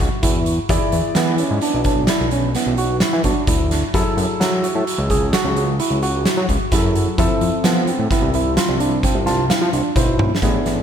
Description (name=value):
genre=progressive instrumental, band music in an uneven meter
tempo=130 BPM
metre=7/4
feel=straight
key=unclear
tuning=A4 = 441 Hz
part: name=warm grand piano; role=accompaniment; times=0.0-10.8 s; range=E3 to A5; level=-26 LUFS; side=left 3 dB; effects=none
part: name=fat analog bass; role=bass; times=0.0-10.8 s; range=A1 to F#3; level=-20 LUFS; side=equal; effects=none
part: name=oversized low-tuned drum kit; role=drums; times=0.0-10.8 s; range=hi-hat, kick drum, snare drum, toms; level=-20 LUFS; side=equal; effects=none
part: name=overdriven tine electric piano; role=arpeggios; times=0.2-10.8 s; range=B3 to G#4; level=-21 LUFS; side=right 4 dB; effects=diffuse ambient delay
room=moderate lush hall reverb, RT60 2.1 s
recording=dreamy mix soaked in reverb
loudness=-16 LUFS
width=side -8 dB against mid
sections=0.0-10.4 A section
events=grand piano fill 9.0-10.4; drum fill 10.2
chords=0.0 F#m9; 0.7 E7; 3.9 F#m9; 7.2 Fmaj7